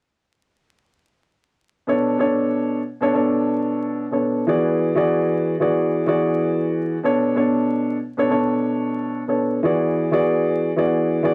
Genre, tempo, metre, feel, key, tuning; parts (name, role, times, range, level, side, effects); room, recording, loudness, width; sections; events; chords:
hip hop; 93 BPM; 4/4; swing 54% on 16ths; B dorian; A4 = 440 Hz
dark concert grand piano; solo; 1.9-11.3 s; B2 to D5; -20 LUFS; equal; cassette tape, high-pass filter, low-pass filter
moderate small room reverb, RT60 0.5 s; home recording on cassette, vinyl crackle; -21 LUFS; mono
1.9-11.3 A section
1.9 Bm7; 4.5 E7; 7.0 Bm7; 9.6 E7